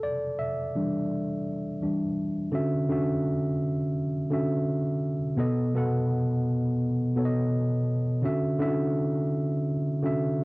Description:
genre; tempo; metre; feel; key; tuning
hip hop; 84 BPM; 4/4; swing 59% on 16ths; unclear; A4 = 439 Hz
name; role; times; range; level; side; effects
tine electric piano; solo; 0.0-10.4 s; B2 to F#5; -25 LUFS; equal; cassette tape, low-pass filter
room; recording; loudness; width
moderate studio reverb, RT60 0.5 s; home recording on cassette; -25 LUFS; side -24 dB against mid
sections
0.0-2.5 A section; 2.5-10.4 B section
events
tine electric piano solo 0.0-2.5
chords
0.0 Em7; 2.5 Dmaj9; 5.4 B7; 8.2 Dmaj9

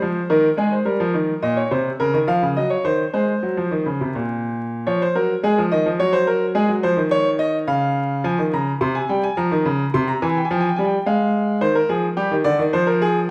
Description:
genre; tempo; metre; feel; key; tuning
classical, baroque-style two-part invention for grand piano; 106 BPM; 3/4; straight; Db major, F minor from 8.2 s; A4 = 441 Hz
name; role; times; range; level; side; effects
bright concert grand piano; solo; 0.0-13.3 s; Bb2 to C6; -20 LUFS; equal; none
room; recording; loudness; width
moderate recital hall reverb, RT60 1.5 s; vinyl crackle; -20 LUFS; mono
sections
0.0-4.9 A section; 4.9-8.2 B section; 8.2-13.3 C section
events
none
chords
0.0 Ab; 0.9 Ebadd9; 1.4 Bbm; 2.6 Gb5; 3.1 N.C.; 4.9 Db/F; 6.0 Gb; 6.5 Ab7; 7.7 Db; 8.2 Fm; 9.4 Db69; 9.9 C7; 11.1 Fm/Ab; 11.6 Cm/Eb; 12.7 Fmadd11

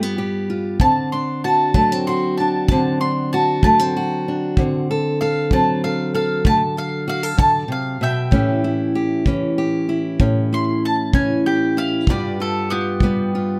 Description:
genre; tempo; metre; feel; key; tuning
acoustic country blues, solo or duo; 64 BPM (dotted quarters); 12/8; straight; D mixolydian; A4 = 441 Hz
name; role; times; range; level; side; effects
fingerpicked steel-string acoustic guitar; accompaniment; 0.0-13.6 s; G2 to A4; -22 LUFS; equal; none
mandolin; melody; 0.8-13.6 s; B3 to C6; -24 LUFS; equal; slapback echo
kick drum; drums; 0.8-13.2 s; none; -21 LUFS; equal; none
room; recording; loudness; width
light reverb; close, detailed microphones; -19 LUFS; mono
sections
0.0-13.6 A section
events
mandolin solo 0.0-13.6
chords
0.0 G7; 0.8 D7; 8.3 A7; 12.1 G7

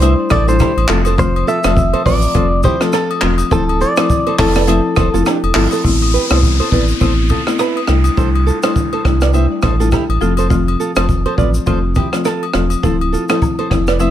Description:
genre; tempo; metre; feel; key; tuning
afrobeats; 103 BPM; 4/4; swing 58% on 16ths; A minor; A4 = 441 Hz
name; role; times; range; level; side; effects
direct-recorded clean electric guitar; melody; 0.0-5.5 s; A4 to E5; -18 LUFS; equal; ping-pong delay
buzzing marimba with medium mallets; accompaniment; 0.0-14.1 s; F3 to F4; -18 LUFS; left 4 dB; none
nylon-string guitar; riff; 0.0-14.1 s; D4 to E5; -21 LUFS; right 8 dB; ping-pong delay
sub bass with octave; bass; 0.0-14.1 s; D1 to C2; -16 LUFS; equal; none
compact cocktail drum kit; drums; 0.0-14.1 s; handclaps, hi-hat, kick drum, rim click, shaker; -18 LUFS; equal; none
agogo bells and woodblock; percussion; 0.0-14.1 s; none; -24 LUFS; left 8 dB; none
downlifter; sound effects; 5.8-10.5 s; none; -25 LUFS; left 2 dB; none
room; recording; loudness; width
small room reverb; none; -12 LUFS; side -11 dB against mid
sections
0.0-5.8 A section; 5.8-14.1 B section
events
none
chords
0.0 Am; 0.9 F; 3.5 Dm7; 5.8 Amadd9; 10.2 F; 12.8 Dm7

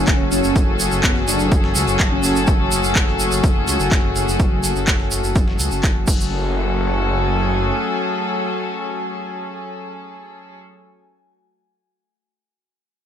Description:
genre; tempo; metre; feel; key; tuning
melodic techno; 125 BPM; 4/4; straight; F# minor; A4 = 440 Hz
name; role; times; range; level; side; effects
wide unison lead; melody; 0.0-2.4 s; B3 to D4; -24 LUFS; right 1 dB; sidechain pumping
warm studio string section; sustained chords; 0.0-10.6 s; F#3 to A4; -24 LUFS; left 1 dB; sidechain pumping
swelling detuned saw bass; bass; 0.0-7.7 s; F#1 to C#2; -23 LUFS; equal; tube saturation, sidechain pumping
sub drop; sound effects; 0.0-0.6 s; none; barely audible; none; none
airy breathy pad; texture; 0.0-10.9 s; A3 to G#5; -25 LUFS; left 3 dB; chorus, sidechain pumping
breakbeat sampler-style drum kit; drums; 0.1-6.0 s; hi-hat, snare drum; -33 LUFS; equal; none
electronic kick drum; drums; 0.1-6.2 s; none; -18 LUFS; equal; none
punchy analog drum machine; drums; 0.1-6.2 s; crash cymbal, handclaps; -22 LUFS; equal; none
tube shaker; percussion; 0.1-6.3 s; none; -25 LUFS; right 3 dB; none
room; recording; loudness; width
light reverb; none; -16 LUFS; side -9 dB against mid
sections
0.0-6.3 A section; 6.3-10.2 B section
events
impact 0.0-0.6; filter sweep on detuned saw bass 0.0-6.3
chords
0.0 F#madd9

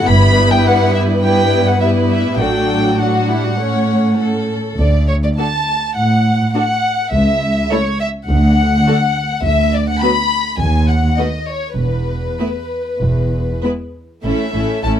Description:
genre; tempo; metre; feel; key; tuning
quick classical-period movement for string orchestra; 102 BPM; 4/4; rubato; D major, A major from 9.4 s; A4 = 440 Hz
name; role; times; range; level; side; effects
warm chamber violin section; melody; 0.0-14.9 s; B4 to B5; -18 LUFS; left 2 dB; none
rich chamber violin section; second line; 0.0-15.0 s; E4 to C#5; -19 LUFS; left 2 dB; none
rich studio viola section; accompaniment; 0.0-15.0 s; F#3 to E4; -19 LUFS; left 1 dB; none
dark chamber cello section; bass; 0.0-14.9 s; C#2 to A2; -17 LUFS; right 1 dB; none
rich chamber double bass section; bass; 0.1-14.9 s; E1 to D#2; -18 LUFS; right 1 dB; none
room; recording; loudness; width
light reverb; dark, warm production; -13 LUFS; side -9 dB against mid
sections
0.0-14.2 A section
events
none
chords
0.1 Em/G; 2.4 D/A; 3.6 A; 4.8 D; 7.1 A/C# (rootless); 8.3 D; 9.4 Bm/D; 10.6 B/D# (rootless); 11.8 E5; 14.2 A

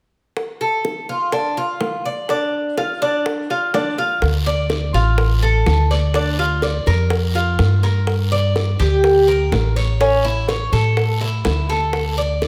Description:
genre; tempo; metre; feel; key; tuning
latin, Cuban son and guajira; 124 BPM; 4/4; straight; D minor; A4 = 440 Hz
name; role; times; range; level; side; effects
bongos; percussion; 0.4-12.5 s; none; -28 LUFS; equal; none
Cuban tres; arpeggios; 0.6-12.5 s; C#4 to D5; -22 LUFS; equal; none
upright bass; bass; 4.2-12.5 s; A1 to A2; -20 LUFS; equal; none
guiro; percussion; 4.2-12.5 s; none; -34 LUFS; equal; none
room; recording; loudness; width
moderate large studio reverb, RT60 1.4 s; none; -18 LUFS; mono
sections
0.4-4.2 A section; 4.2-12.5 B section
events
none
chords
0.4 Dm; 6.1 Bb/D; 8.1 Gm; 10.0 A; 11.9 D5

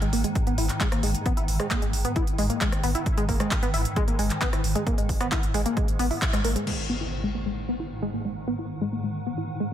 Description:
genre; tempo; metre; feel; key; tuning
driving peak-time techno; 133 BPM; 4/4; straight; G# minor; A4 = 440 Hz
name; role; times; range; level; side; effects
tight sequenced synth; riff; 0.0-9.7 s; G#3 to E4; -28 LUFS; equal; chorus, sidechain pumping, dub echo
saturated sub bass; bass; 0.0-6.6 s; G#1; -28 LUFS; equal; tube saturation, sidechain pumping, low-pass filter
swarming drone; drone; 0.0-9.7 s; G#2 to D#3; -33 LUFS; equal; built-in reverb, sidechain pumping
techno drum kit; drums; 0.0-6.8 s; crash cymbal, handclaps, hi-hat, rim click; -31 LUFS; equal; none
electronic kick drum; drums; 0.4-6.3 s; none; -26 LUFS; equal; none
impact; sound effects; 6.7-8.5 s; none; -36 LUFS; equal; none
room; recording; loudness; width
light reverb, digital ambience; none; -23 LUFS; side -10 dB against mid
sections
0.0-6.7 A section; 6.7-9.7 B section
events
band accent 6.2; impact 6.7-8.5; filter sweep on synth arpeggio sound 6.7-9.7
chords
0.0 G#5

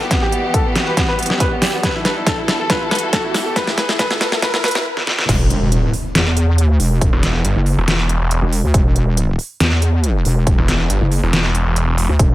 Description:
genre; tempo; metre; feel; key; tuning
heavy wobble dubstep; 139 BPM; 4/4; half-time; E minor; A4 = 440 Hz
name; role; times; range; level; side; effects
bright grand piano; melody; 0.0-4.8 s; B3 to B4; -22 LUFS; left 1 dB; low-pass filter, tape echo
warm studio string section; sustained chords; 0.0-4.8 s; E3 to A4; -24 LUFS; equal; sidechain pumping
riser and impact; sound effects; 1.1-7.0 s; none; -26 LUFS; equal; none
dubstep drum kit; drums; 0.1-12.3 s; crash cymbal, hi-hat, snare drum; -19 LUFS; equal; studio ambience
electronic kick drum; drums; 0.1-12.3 s; none; -18 LUFS; equal; studio ambience
wobble bass; bass; 5.3-12.3 s; E1 to E2; -15 LUFS; equal; chorus, overdrive
snarling distorted saw bass; bass; 7.1-12.1 s; E1 to G1; -16 LUFS; equal; overdrive
room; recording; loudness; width
digital ambience; high-pass filter; -14 LUFS; side -16 dB against mid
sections
0.0-5.3 A section; 5.3-12.3 B section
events
build-up 0.0-5.3; drum fill 0.0-4.9, 5.0-5.3; filter sweep on grand piano 0.0-5.3; filter sweep 0.0-5.3; riser 1.1-4.9; drop 5.3-12.3; impact 5.3-7.0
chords
0.0 Emadd9; 5.3 N.C.

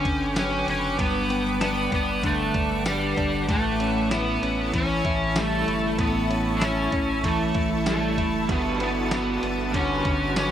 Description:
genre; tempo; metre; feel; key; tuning
dream pop; 96 BPM; 4/4; straight; G lydian; A4 = 440 Hz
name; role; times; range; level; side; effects
overdriven slide guitar; melody; 0.0-10.5 s; G3 to D4; -25 LUFS; right 2 dB; tape echo
shimmering ambient pad; sustained chords; 0.0-10.5 s; E4 to D6; -31 LUFS; equal; chorus, built-in reverb, phaser
semi-hollow electric guitar; arpeggios; 0.0-10.5 s; G2 to E4; -28 LUFS; left 3 dB; analog chorus, tape echo
saturated sub bass; bass; 0.0-10.5 s; F#1 to A1; -33 LUFS; equal; none
dusty soul sampler-style drum kit; drums; 0.1-10.5 s; kick drum, ride cymbal, snare drum, tambourine; -29 LUFS; equal; none
crunchy overdriven guitar; accompaniment; 8.5-10.5 s; G3 to B4; -30 LUFS; right 2 dB; tremolo, wide subtle chorus
room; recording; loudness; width
light reverb; none; -22 LUFS; side -10 dB against mid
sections
0.0-10.5 A section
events
none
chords
0.0 Gmaj7; 3.5 A7; 8.5 Gmaj7

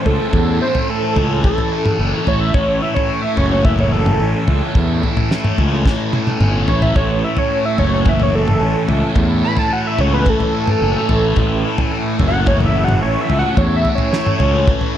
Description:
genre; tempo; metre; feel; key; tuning
psychedelic rock; 109 BPM; 4/4; straight; A major; A4 = 440 Hz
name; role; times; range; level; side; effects
wide unison lead; melody; 0.0-15.0 s; A4 to B5; -20 LUFS; right 1 dB; analog delay
overdriven combo organ; sustained chords; 0.0-15.0 s; A3 to A4; -30 LUFS; right 5 dB; wide subtle chorus
thick fuzz guitar; riff; 0.0-15.0 s; A2 to E4; -20 LUFS; left 1 dB; distortion, phaser, analog delay
fuzz fingered electric bass; bass; 0.1-14.7 s; F#1 to E2; -18 LUFS; equal; overdrive
damped 70s drum kit; drums; 0.1-14.9 s; kick drum, snare drum, toms; -18 LUFS; equal; none
room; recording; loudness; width
light reverb; echo-heavy mix; -14 LUFS; side -10 dB against mid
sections
0.0-15.0 A section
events
analog synth lead solo 0.0-15.0; drum fill 5.9-7.0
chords
0.0 A

